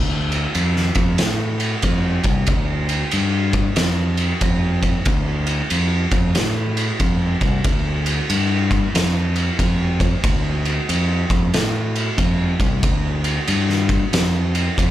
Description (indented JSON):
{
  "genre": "stoner and doom metal",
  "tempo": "93 BPM",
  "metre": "4/4",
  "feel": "swing 64% on 8ths",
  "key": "D minor",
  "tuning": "A4 = 441 Hz",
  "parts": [
    { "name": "growling fingered electric bass", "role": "bass", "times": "0.0-14.9 s", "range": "C2 to A2", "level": "-20 LUFS", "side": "equal", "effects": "overdrive" },
    { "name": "oversized low-tuned drum kit", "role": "drums", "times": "0.3-14.9 s", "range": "kick drum, ride cymbal, snare drum", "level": "-20 LUFS", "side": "equal", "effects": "none" }
  ],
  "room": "little or no reverb",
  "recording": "live gig heard through the venue's PA, club reverb",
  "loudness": "-17 LUFS",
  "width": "side -13 dB against mid",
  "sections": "0.0-14.9 A section",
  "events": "none",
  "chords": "none"
}